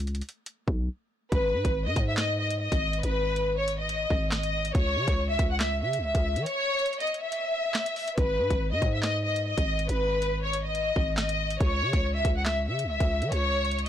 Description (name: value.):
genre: hip hop, drill.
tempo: 140 BPM.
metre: 4/4.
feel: half-time.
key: G# minor.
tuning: A4 = 440 Hz.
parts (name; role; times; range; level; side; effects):
growling 808-style bass; bass; 0.0-13.9 s; G#1 to E3; -30 LUFS; equal; none.
drill drum kit; drums; 0.0-13.9 s; handclaps, hi-hat, kick drum, snare drum; -29 LUFS; equal; soft clipping on snare.
warm studio violin section; melody; 1.3-13.9 s; B4 to F#5; -28 LUFS; left 1 dB; none.
room: little or no reverb.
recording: blown-out, overdriven recording, overdrive.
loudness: -25 LUFS.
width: side -10 dB against mid.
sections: 0.0-13.9 A section.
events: break 0.0-1.3, 6.5-8.2.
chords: 0.0 N.C.; 1.3 G#m; 4.7 C#m; 8.2 G#m; 11.6 C#m.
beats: 0.03 0.46 0.89 | 1.32 1.75 2.18 2.60 | 3.03 3.46 3.89 4.32 | 4.75 5.18 5.61 6.03 | 6.46 6.89 7.32 7.75 | 8.18 8.61 9.03 9.46 | 9.89 10.32 10.75 11.18 | 11.61 12.03 12.46 12.89 | 13.32 13.75.